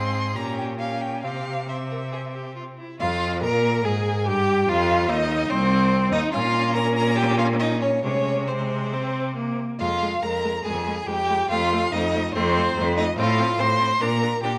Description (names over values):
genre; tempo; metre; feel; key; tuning
quick classical-period movement for string quartet; 133-147 BPM; 4/4; rubato; F minor; A4 = 441 Hz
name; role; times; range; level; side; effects
rich violin; melody; 0.0-14.6 s; C5 to C6; -29 LUFS; equal; none
clear violin; second line; 0.0-14.6 s; C4 to C5; -29 LUFS; equal; none
clear viola; accompaniment; 0.0-14.5 s; Ab3 to Bb4; -30 LUFS; equal; none
rich cello; bass; 0.0-14.6 s; C2 to C3; -27 LUFS; equal; none
room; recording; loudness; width
wet recital hall reverb, RT60 1.8 s; worn, warbling old tape, cassette tape, warbly pitch drift; -23 LUFS; mono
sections
0.0-3.0 A section; 3.0-14.6 B section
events
none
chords
0.4 Gdim/Bb; 1.2 C; 3.0 Fm; 4.7 F5; 6.3 Bbm; 8.0 Abadd11/C; 8.9 Bbsus2/C; 9.8 Fm; 11.5 F7; 13.2 F/A; 14.0 Bb